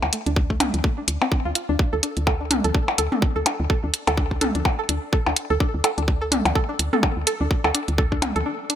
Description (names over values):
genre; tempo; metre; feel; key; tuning
minimal techno; 126 BPM; 4/4; swing 58% on 16ths; unclear; A4 = 438 Hz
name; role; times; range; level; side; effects
woody FM bass; bass; 0.0-8.4 s; C2 to D2; -25 LUFS; equal; tube saturation, sidechain pumping
electronic percussion blips and toms; percussion; 0.0-8.3 s; none; -25 LUFS; left 2 dB; ping-pong delay
string-like resonator pluck; riff; 0.1-8.7 s; A3 to A4; -27 LUFS; right 1 dB; chorus, phaser, sidechain pumping, ping-pong delay
electronic hi-hat; drums; 0.1-8.8 s; none; -22 LUFS; equal; none
electronic kick drum; drums; 0.4-8.2 s; none; -21 LUFS; equal; none
room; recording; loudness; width
light reverb, digital ambience; bright 1980s-style digital production; -20 LUFS; side -10 dB against mid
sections
0.0-8.8 A section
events
filter sweep on synth pluck 0.0-8.8; break 8.5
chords
0.0 D5